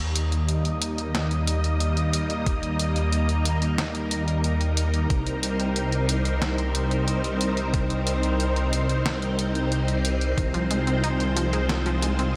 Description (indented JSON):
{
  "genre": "synthwave",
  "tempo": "91 BPM",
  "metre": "4/4",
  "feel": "straight",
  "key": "unclear",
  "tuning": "A4 = 440 Hz",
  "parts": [
    { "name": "string machine, full ensemble", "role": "sustained chords", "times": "0.0-12.4 s", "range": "G3 to Eb5", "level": "-30 LUFS", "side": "equal", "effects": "ensemble chorus, vintage 12-bit sampler grit, sidechain pumping" },
    { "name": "dark detuned saw bass", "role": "bass", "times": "0.0-12.4 s", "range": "C2 to Eb2", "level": "-27 LUFS", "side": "equal", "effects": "tube saturation, sidechain pumping" },
    { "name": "detuned 8-bit digital drum machine", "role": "drums", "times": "0.2-12.3 s", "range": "hi-hat, snare drum", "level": "-32 LUFS", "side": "equal", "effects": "studio reverb" },
    { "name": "electronic kick drum", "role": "drums", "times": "2.5-10.5 s", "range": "none", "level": "-28 LUFS", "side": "equal", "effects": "studio reverb" },
    { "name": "analog pluck", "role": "arpeggios", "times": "10.4-12.3 s", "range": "Eb3 to Eb4", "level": "-31 LUFS", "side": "equal", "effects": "chorus, digital delay" }
  ],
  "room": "light reverb, digital ambience",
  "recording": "none",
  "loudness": "-25 LUFS",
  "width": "mono",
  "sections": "0.0-12.4 A section",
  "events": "none",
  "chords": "0.0 Eb; 5.1 Cm7; 10.4 Fm7/C",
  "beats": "0.49 1.15 1.80 | 2.46 3.12 3.78 4.44 | 5.10 5.76 6.42 7.08 | 7.74 8.40 9.06 9.72 | 10.38 11.04 11.70 12.35"
}